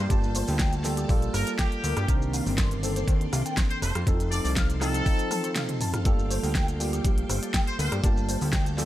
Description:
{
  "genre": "nu-disco, nu disco",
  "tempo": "121 BPM",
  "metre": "4/4",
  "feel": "straight",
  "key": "G minor",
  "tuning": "A4 = 440 Hz",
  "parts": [
    { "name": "muted trumpet section", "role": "melody", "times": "0.0-8.0 s", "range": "G4 to D5", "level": "-35 LUFS", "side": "equal", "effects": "tape echo" },
    { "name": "tine electric piano", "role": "accompaniment", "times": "0.0-8.9 s", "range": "Eb3 to A5", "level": "-31 LUFS", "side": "right 1 dB", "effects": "wide subtle chorus" },
    { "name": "string machine, full ensemble", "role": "sustained chords", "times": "0.0-8.9 s", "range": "Bb3 to C6", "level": "-40 LUFS", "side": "equal", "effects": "ensemble chorus, vintage 12-bit sampler grit, sidechain pumping" },
    { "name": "electric guitar with an envelope filter", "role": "riff", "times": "0.0-8.8 s", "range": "F3 to C6", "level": "-36 LUFS", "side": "left 3 dB", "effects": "ensemble chorus" },
    { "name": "fat analog bass", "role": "bass", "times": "0.0-8.9 s", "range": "F1 to G2", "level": "-28 LUFS", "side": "equal", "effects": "tube saturation" },
    { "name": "electronic kick drum", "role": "drums", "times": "0.1-8.6 s", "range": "none", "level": "-25 LUFS", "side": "equal", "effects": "none" },
    { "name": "pop drum kit", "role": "drums", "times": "0.1-8.9 s", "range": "hi-hat, rim click, shaker, snare drum, toms", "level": "-31 LUFS", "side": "equal", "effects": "none" }
  ],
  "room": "little or no reverb",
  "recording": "none",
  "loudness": "-23 LUFS",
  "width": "side -14 dB against mid",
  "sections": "0.0-8.9 A section",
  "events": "drum fill 5.3-6.1; break 5.6-6.1",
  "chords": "0.0 Gm9; 2.1 Cm9; 3.8 F7; 6.1 Gm9"
}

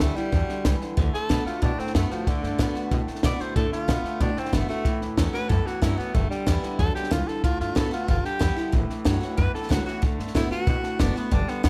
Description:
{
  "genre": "rockabilly",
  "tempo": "186 BPM",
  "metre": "4/4",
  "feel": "straight",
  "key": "D major",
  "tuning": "A4 = 440 Hz",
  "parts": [
    { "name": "breathy tenor saxophone", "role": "melody", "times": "0.0-11.7 s", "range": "D3 to D5", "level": "-33 LUFS", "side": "equal", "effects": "none" },
    { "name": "picked steel-string acoustic guitar", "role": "accompaniment", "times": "0.0-11.7 s", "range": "E2 to F#4", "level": "-34 LUFS", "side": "equal", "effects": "none" },
    { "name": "electric guitar through a small old amp", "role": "riff", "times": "0.0-11.7 s", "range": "G2 to B3", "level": "-36 LUFS", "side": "equal", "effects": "subtle chorus" },
    { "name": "upright bass", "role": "bass", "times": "0.0-11.7 s", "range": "F#1 to B2", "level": "-29 LUFS", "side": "equal", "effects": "none" },
    { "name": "compact cocktail drum kit", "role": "drums", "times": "0.0-11.7 s", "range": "hi-hat, kick drum, snare drum", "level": "-28 LUFS", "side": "equal", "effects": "none" }
  ],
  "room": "light reverb, small room reverb",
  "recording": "none",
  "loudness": "-25 LUFS",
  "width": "mono",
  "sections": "0.0-10.0 A section; 10.0-11.7 A section",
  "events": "none",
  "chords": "0.0 G6; 1.0 D6; 4.9 A6; 6.2 G6; 7.4 D6; 8.1 G6; 8.7 A6; 10.0 D6"
}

